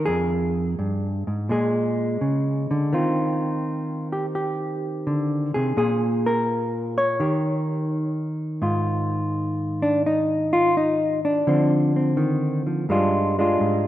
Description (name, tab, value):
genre	solo jazz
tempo	84 BPM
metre	4/4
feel	swing 68% on 8ths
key	Eb major, Ab major from 8.6 s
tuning	A4 = 440 Hz
part	hollow-body jazz guitar	solo	0.0-13.9 s	F2 to Db5	-20 LUFS	equal	none
room	wet lush hall reverb, RT60 2.3 s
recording	rough home demo mix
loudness	-20 LUFS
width	side -13 dB against mid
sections	0.0-8.6 A section; 8.6-13.9 B section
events	hollow-body jazz guitar solo 8.6-13.9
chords	0.1 Fmadd9; 1.5 Bb7#9; 2.9 Eb69; 5.8 N.C.; 7.2 Eb7; 8.6 Ab5; 11.5 Dm7; 12.9 G7(no3)